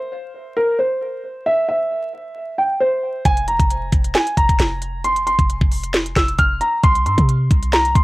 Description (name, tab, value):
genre	hip hop, trap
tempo	134 BPM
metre	4/4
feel	half-time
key	F harmonic minor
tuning	A4 = 440 Hz
part	dark concert grand piano	melody	0.0-8.0 s	Bb4 to F6	-19 LUFS	equal	cassette tape, tape echo
part	clean 808-style bass	bass	3.3-8.0 s	E1 to C3	-20 LUFS	equal	none
part	trap drum kit	drums	3.3-8.0 s	hi-hat, kick drum, snare drum	-17 LUFS	equal	cassette tape
room	little or no reverb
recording	home recording on cassette, vinyl crackle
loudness	-16 LUFS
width	side -20 dB against mid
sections	0.0-3.3 A section; 3.3-8.0 B section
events	none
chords	0.0 N.C.; 3.3 F5; 6.8 N.C.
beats	0.12 0.57 1.01 | 1.46 1.91 2.36 2.81 | 3.25 3.70 4.15 4.60 | 5.04 5.49 5.94 6.39 | 6.83 7.28 7.73